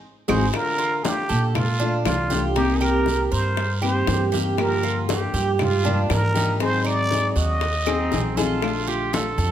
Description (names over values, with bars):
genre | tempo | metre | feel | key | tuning
latin, Cuban son and guajira | 119 BPM | 4/4 | straight | Bb major | A4 = 440 Hz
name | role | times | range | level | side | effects
trumpet with plunger mute | melody | 0.3-8.4 s | F4 to Eb5 | -25 LUFS | right 1 dB | none
nylon-string guitar | accompaniment | 0.3-9.5 s | C3 to Ab4 | -26 LUFS | left 5 dB | none
Cuban tres | arpeggios | 0.3-9.5 s | C4 to Bb4 | -27 LUFS | right 6 dB | slapback echo
upright bass | bass | 0.3-9.5 s | Ab1 to Bb2 | -24 LUFS | right 1 dB | none
bongos | percussion | 0.3-9.5 s | none | -31 LUFS | left 7 dB | none
claves | percussion | 0.3-8.9 s | none | -36 LUFS | right 4 dB | none
congas | percussion | 0.3-9.5 s | none | -30 LUFS | left 1 dB | none
guiro | percussion | 0.3-9.5 s | none | -35 LUFS | right 7 dB | none
warm trumpet | second line | 7.9-9.5 s | C4 to A4 | -28 LUFS | right 5 dB | none
room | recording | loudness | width
moderate large studio reverb, RT60 1.3 s | close, detailed microphones | -19 LUFS | side -10 dB against mid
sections
0.5-9.5 A section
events
band accent 0.0-0.5; drum fill 7.9-8.6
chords
0.0 Ab7; 0.5 Bbmaj7; 2.6 Cm7; 4.6 Gm7; 6.6 Ab7; 8.6 Bbmaj7